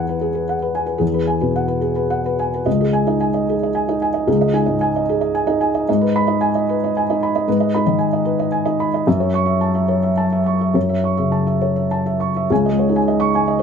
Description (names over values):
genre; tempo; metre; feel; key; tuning
neoclassical minimalist piano; 111 BPM; 3/4; rubato; C# minor; A4 = 440 Hz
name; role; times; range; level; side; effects
felt-muted upright piano; solo; 0.0-13.6 s; C#2 to C#6; -16 LUFS; equal; none
room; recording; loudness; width
light reverb; none; -16 LUFS; side -7 dB against mid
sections
0.0-12.5 A section; 12.5-13.6 B section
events
none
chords
0.0 Eadd9; 2.7 C#sus2; 5.9 G#m; 9.1 F#m7; 12.5 C#sus2